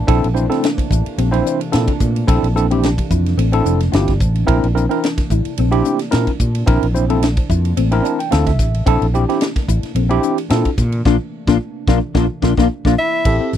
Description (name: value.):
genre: electric jazz fusion.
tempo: 109 BPM.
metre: 4/4.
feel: swing 54% on 16ths.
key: Bb lydian.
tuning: A4 = 440 Hz.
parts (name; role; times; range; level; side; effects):
tine electric piano; accompaniment; 0.0-13.5 s; Bb3 to A5; -19 LUFS; right 1 dB; overdrive, medium stereo tremolo.
hollow soft pad; sustained chords; 0.0-13.2 s; C3 to D4; -28 LUFS; right 4 dB; chorus.
fretless electric bass; bass; 0.0-13.6 s; F1 to Bb2; -17 LUFS; equal; none.
mellow electric guitar; stabs; 0.1-13.6 s; Bb3 to F4; -23 LUFS; left 17 dB; ensemble chorus.
tight funk drum kit; drums; 0.1-13.6 s; crash cymbal, hi-hat, kick drum, ride cymbal, snare drum; -19 LUFS; equal; none.
mellow soprano saxophone; melody; 13.0-13.5 s; E5; -18 LUFS; right 2 dB; slapback echo.
mellow trombone; second line; 13.0-13.5 s; E4; -23 LUFS; left 13 dB; none.
room: little or no reverb.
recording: dry, close 1970s-style studio recording.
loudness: -14 LUFS.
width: side -10 dB against mid.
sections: 0.0-13.3 A section.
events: tine electric piano fill 7.8-8.9, 12.2-13.3; band accent 11.1-13.3.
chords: 0.0 Bbmaj9#11.